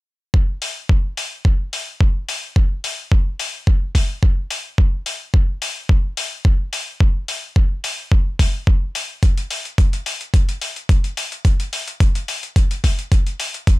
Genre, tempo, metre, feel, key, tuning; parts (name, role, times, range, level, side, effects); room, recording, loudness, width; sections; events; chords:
nu-disco, nu disco; 108 BPM; 4/4; swing 53% on 16ths
electronic kick drum; drums; 0.3-13.8 s; -14 LUFS; equal; overdrive
electronic hi-hat; drums; 0.6-13.8 s; -25 LUFS; left 3 dB; overdrive
little or no reverb; -17 LUFS; side -20 dB against mid
0.3-13.8 A section